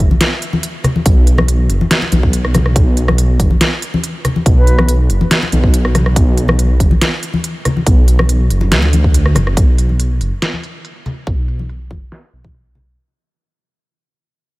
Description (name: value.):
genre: deep dubstep.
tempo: 141 BPM.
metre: 4/4.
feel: half-time.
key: B minor.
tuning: A4 = 440 Hz.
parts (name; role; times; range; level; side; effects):
dark detuned saw bass; bass; 0.0-13.0 s; F#1 to D2; -13 LUFS; equal; none.
congas; percussion; 0.0-12.8 s; none; -19 LUFS; left 2 dB; none.
dubstep drum kit; drums; 0.2-12.8 s; hi-hat, rim click, snare drum; -18 LUFS; equal; low-pass filter on hats, low-pass filter on snare.
electronic kick drum; drums; 1.1-12.5 s; none; -12 LUFS; equal; none.
reedy shakuhachi; melody; 4.6-4.9 s; B4; -28 LUFS; right 1 dB; vintage 12-bit sampler grit, dub echo.
room: studio reverb.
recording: none.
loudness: -11 LUFS.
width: side -20 dB against mid.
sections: 0.0-9.6 A section; 9.6-13.0 B section.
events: drop 0.0-9.6; kick drops out 9.1-9.6; fade-out 9.6-13.0; filter sweep on drum 9.6-13.0.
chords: 0.0 Bm; 9.6 B5.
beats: 0.21 0.63 | 1.06 1.48 1.91 2.33 | 2.76 3.18 3.61 4.04 | 4.46 4.89 5.31 5.74 | 6.16 6.59 7.01 7.44 | 7.87 8.29 8.72 9.14 | 9.57 9.99 10.42 10.84 | 11.27 11.70 12.12 12.55.